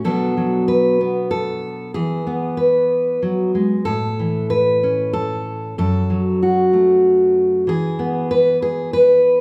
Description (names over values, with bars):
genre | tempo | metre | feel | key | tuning
folk, solo fingerstyle acoustic guitar | 95 BPM | 3/4 | straight | unclear | A4 = 440 Hz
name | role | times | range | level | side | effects
fingerpicked steel-string acoustic guitar | solo | 0.0-9.4 s | F#2 to B4 | -18 LUFS | equal | none
room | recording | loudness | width
moderate recital hall reverb, RT60 1.4 s | recorded in a church or concert hall | -18 LUFS | mono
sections
0.0-9.4 A section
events
none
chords
0.0 Bm; 1.9 E; 3.9 Aadd9; 5.8 F#m; 7.7 E